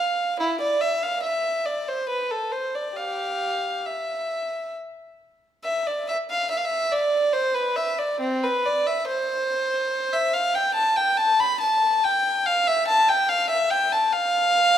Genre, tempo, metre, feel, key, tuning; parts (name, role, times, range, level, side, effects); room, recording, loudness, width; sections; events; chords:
classical, baroque-style suite movement for unaccompanied violin; 70 BPM; 3/4; uneven beats, rubato; A4 = 441 Hz
warm violin; solo; 0.0-14.8 s; C4 to B5; -21 LUFS; equal
moderate recital hall reverb, RT60 1.7 s; dark, warm production; -21 LUFS; side -10 dB against mid
0.0-5.6 A section; 5.6-14.8 A section